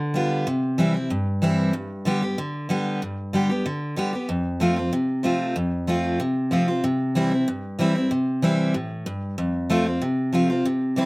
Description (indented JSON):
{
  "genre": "bluegrass",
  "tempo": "188 BPM",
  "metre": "4/4",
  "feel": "straight",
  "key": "C major",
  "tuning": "A4 = 440 Hz",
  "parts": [
    { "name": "picked steel-string acoustic guitar", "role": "solo", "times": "0.0-11.1 s", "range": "F2 to G4", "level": "-21 LUFS", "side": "equal", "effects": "none" }
  ],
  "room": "light reverb",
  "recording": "recorded outdoors, with no room sound",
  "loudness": "-21 LUFS",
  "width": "side -25 dB against mid",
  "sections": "0.0-1.7 A section; 1.7-11.1 B section",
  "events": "none",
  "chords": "0.5 C; 1.7 G; 4.3 F; 6.8 C; 9.4 F"
}